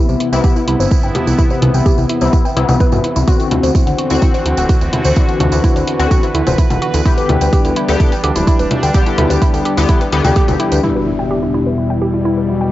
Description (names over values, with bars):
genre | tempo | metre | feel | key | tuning
melodic techno | 127 BPM | 4/4 | straight | E minor | A4 = 440 Hz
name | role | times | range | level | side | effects
sweeping resonant pad | sustained chords | 0.0-12.7 s | E2 to B4 | -20 LUFS | equal | chorus, sidechain pumping
woody wave-folded pluck | arpeggios | 0.0-12.7 s | B3 to G5 | -20 LUFS | right 1 dB | chorus, sidechain pumping, tape echo
sync-sweep polysynth | stabs | 0.0-12.7 s | B2 to G4 | -19 LUFS | left 6 dB | chorus, sidechain pumping, tape echo
bowed-like drone | drone | 0.2-12.7 s | E2 to E3 | -28 LUFS | right 2 dB | none
fat analog bass | bass | 0.1-10.8 s | D1 to D2 | -16 LUFS | right 1 dB | tube saturation, sidechain pumping
tambourine | percussion | 0.1-10.8 s | none | -30 LUFS | right 11 dB | none
electronic hi-hat and congas | drums | 0.2-10.8 s | none | -21 LUFS | left 1 dB | overdrive, low-pass filter on hats, cassette tape, low-pass filter on perc, low-pass filter on room
electronic kick drum | drums | 0.4-10.5 s | none | -13 LUFS | equal | cassette tape
wide unison lead | melody | 10.8-12.7 s | D4 to F#4 | -21 LUFS | right 1 dB | sidechain pumping, cassette tape, tape echo
impact | sound effects | 10.8-12.7 s | none | -27 LUFS | equal | none
room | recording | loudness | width
light reverb | home recording on cassette, nothing above 7.6 kHz | -11 LUFS | side -15 dB against mid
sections
0.0-10.8 A section; 10.8-12.7 B section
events
filter sweep on synth pluck 0.0-10.8; filter sweep on analog polysynth 0.0-10.8, 10.8-12.7; impact 10.8-12.7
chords
0.0 Cmaj7; 3.3 D7; 7.1 G/D; 10.8 Em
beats
0.44 0.91 | 1.39 1.86 2.33 2.80 | 3.28 3.75 4.22 4.69 | 5.17 5.64 6.11 6.58 | 7.05 7.53 8.00 8.47 | 8.95 9.42 9.89 10.36 | 10.84 11.31 11.78 12.25